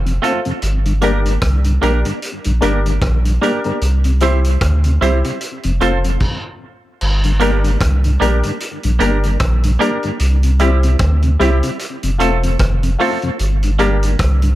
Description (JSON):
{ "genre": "roots reggae", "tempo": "75 BPM", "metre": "4/4", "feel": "swing 59% on 16ths", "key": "G dorian", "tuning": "A4 = 444 Hz", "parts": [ { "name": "warm sub bass", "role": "bass", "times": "0.0-14.6 s", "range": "E1 to D2", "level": "-14 LUFS", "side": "equal", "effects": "none" }, { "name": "mellow tonewheel organ", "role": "accompaniment", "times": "0.1-14.5 s", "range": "F2 to F4", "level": "-23 LUFS", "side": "left 2 dB", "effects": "chorus vibrato, slow rotary speaker, tape echo" }, { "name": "vintage drum kit", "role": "drums", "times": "0.1-14.6 s", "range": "crash cymbal, hi-hat, kick drum, rim click", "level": "-22 LUFS", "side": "equal", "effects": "none" }, { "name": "semi-hollow electric guitar", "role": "accompaniment", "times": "0.2-14.0 s", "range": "G3 to C5", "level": "-22 LUFS", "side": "right 6 dB", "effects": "harmonic tremolo, tape echo" }, { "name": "warm upright piano", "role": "stabs", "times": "0.2-14.0 s", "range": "D4 to C5", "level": "-21 LUFS", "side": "left 3 dB", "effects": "none" } ], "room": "little or no reverb", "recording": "echo-heavy mix", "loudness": "-13 LUFS", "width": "side -15 dB against mid", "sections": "0.0-7.0 A section; 7.0-14.6 B section", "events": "stop 6.2-7.0", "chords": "0.0 F; 0.6 Gm; 3.8 C; 5.4 F; 7.0 Gm; 10.2 C; 11.8 F; 13.4 Gm", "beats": "| 0.62 1.42 2.22 3.02 | 3.81 4.61 5.41 6.21 | 7.01 7.81 8.61 9.40 | 10.20 11.00 11.80 12.60 | 13.40 14.20" }